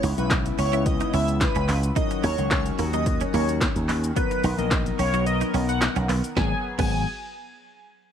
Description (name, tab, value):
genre	dance-pop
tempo	109 BPM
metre	4/4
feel	straight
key	G# minor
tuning	A4 = 440 Hz
part	bell-like tine electric piano	accompaniment	0.0-7.0 s	F#3 to B4	-31 LUFS	left 14 dB	auto-pan, sidechain pumping
part	chorused pulse-width pad	sustained chords	0.0-6.6 s	C#3 to A#4	-33 LUFS	left 1 dB	sidechain pumping
part	direct-recorded clean electric guitar	riff	0.0-7.0 s	A#3 to F#4	-32 LUFS	right 14 dB	ensemble chorus
part	slap bass with an envelope filter	bass	0.0-7.0 s	G#1 to D#2	-25 LUFS	equal	sidechain pumping
part	punchy analog drum machine	drums	0.0-6.9 s	crash cymbal, handclaps, hi-hat, kick drum, shaker, snare drum	-26 LUFS	equal	none
part	airy dreamy lead	melody	0.2-7.0 s	B4 to G#5	-29 LUFS	equal	chorus, sidechain pumping, tape echo
room	light reverb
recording	1960s-style stereo with parts hard left and right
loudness	-21 LUFS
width	side -8 dB against mid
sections	0.0-6.4 A section; 6.4-8.1 B section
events	drop 0.0-6.4; kick muted 5.3-6.4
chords	0.0 C#m7; 2.0 D#m7; 4.2 Bmaj7; 6.4 G#m7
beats	0.31 0.86 1.41 | 1.96 2.51 3.06 3.61 | 4.16 4.71 5.26 5.82 | 6.37 6.92